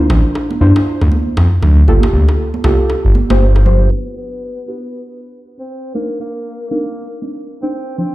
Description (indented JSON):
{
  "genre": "deep house",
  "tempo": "118 BPM",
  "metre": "4/4",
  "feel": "swing 60% on 16ths",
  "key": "unclear",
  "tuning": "A4 = 440 Hz",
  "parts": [
    { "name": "deep mellow chord stab", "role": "stabs", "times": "0.0-8.1 s", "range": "F3 to C5", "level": "-18 LUFS", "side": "right 1 dB", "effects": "chorus, cassette tape, tape echo" },
    { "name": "smooth gliding synth bass", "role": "bass", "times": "0.1-3.9 s", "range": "G1 to G2", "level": "-10 LUFS", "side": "equal", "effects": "none" },
    { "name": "bongos and congas", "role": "percussion", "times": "0.1-3.8 s", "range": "none", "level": "-22 LUFS", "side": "right 3 dB", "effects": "none" },
    { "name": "breathy tenor saxophone", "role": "melody", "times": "3.9-8.1 s", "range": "Bb3 to C4", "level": "-25 LUFS", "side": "equal", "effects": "tape echo" }
  ],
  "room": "little or no reverb",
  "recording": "played on a big sound system in a bare room, large studio reverb, low-pass filter",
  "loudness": "-11 LUFS",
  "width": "side -17 dB against mid",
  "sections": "0.0-3.9 A section; 3.9-8.1 B section",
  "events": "filter sweep on synth stab 3.9-8.1",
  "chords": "0.0 Dm9; 1.9 Gm9; 3.9 Em9; 5.7 Cm9",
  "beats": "0.35 0.86 1.37 | 1.88 2.39 2.90 3.41 | 3.91 4.42 4.93 5.44 | 5.95 6.46 6.96 7.47 | 7.98"
}